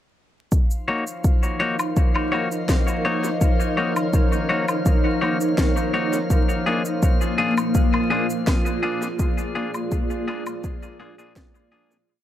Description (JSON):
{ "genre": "ambient dub", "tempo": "83 BPM", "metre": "4/4", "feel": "straight", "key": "unclear", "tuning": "A4 = 438 Hz", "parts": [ { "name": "granular cloud pad", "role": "sustained chords", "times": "1.0-12.1 s", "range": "Bb3 to Eb5", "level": "-26 LUFS", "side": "equal", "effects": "built-in reverb" }, { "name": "electronic cabasa, woodblock and snare drum", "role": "drums", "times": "0.5-12.1 s", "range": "none", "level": "-30 LUFS", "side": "left 1 dB", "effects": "dub echo" }, { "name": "electronic kick drum", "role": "drums", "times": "0.5-11.5 s", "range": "none", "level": "-20 LUFS", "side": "equal", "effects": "none" }, { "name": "drifting glass-harmonics texture", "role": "texture", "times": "0.8-12.1 s", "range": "F3 to F5", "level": "-28 LUFS", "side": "equal", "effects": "chorus, built-in reverb" }, { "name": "clean electric guitar", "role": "stabs", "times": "0.9-12.0 s", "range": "Bb3 to Db5", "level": "-26 LUFS", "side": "left 2 dB", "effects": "warbly pitch drift, dub echo" } ], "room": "little or no reverb", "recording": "echo-heavy mix, vinyl crackle", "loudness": "-19 LUFS", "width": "side -12 dB against mid", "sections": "0.5-12.1 groove", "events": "fade-out 8.2-12.1", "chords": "0.5 Ebm7; 6.3 Bb7" }